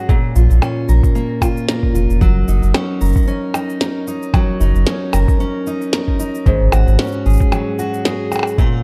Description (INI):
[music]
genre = folktronica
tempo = 113 BPM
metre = 4/4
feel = swing 56% on 16ths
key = F# major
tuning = A4 = 440 Hz
[part]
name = fingerpicked steel-string acoustic guitar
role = arpeggios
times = 0.0-8.8 s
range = G#2 to A#4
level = -22 LUFS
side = equal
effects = delay
[part]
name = electronic kick drum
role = drums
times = 0.1-8.7 s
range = none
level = -18 LUFS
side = equal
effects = none
[part]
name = electronic shaker, percussion blips and snare drum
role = drums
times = 0.1-8.7 s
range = none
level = -24 LUFS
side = equal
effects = none
[part]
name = warm sub bass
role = bass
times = 0.4-7.4 s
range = E#1 to A#1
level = -15 LUFS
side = equal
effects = none
[sound]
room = light reverb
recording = dark, warm production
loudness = -16 LUFS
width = mono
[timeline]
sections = 0.0-8.8 A section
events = none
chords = 0.1 A#m; 2.2 F#6; 6.5 C#sus4/G#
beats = | 0.09 0.62 1.15 1.68 | 2.21 2.74 3.27 3.81 | 4.34 4.87 5.40 5.93 | 6.46 6.99 7.52 8.05 | 8.59